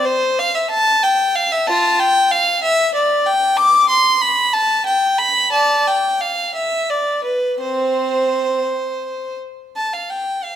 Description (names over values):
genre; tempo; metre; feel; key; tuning
classical, baroque-style suite movement for unaccompanied violin; 55-63 BPM (dotted quarters); 6/8; rubato; C major; A4 = 438 Hz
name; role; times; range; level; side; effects
clear violin; solo; 0.0-10.6 s; C4 to D6; -15 LUFS; equal; none
room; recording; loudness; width
moderate recital hall reverb, RT60 1.6 s; none; -14 LUFS; side -10 dB against mid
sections
0.0-9.8 A section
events
none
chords
none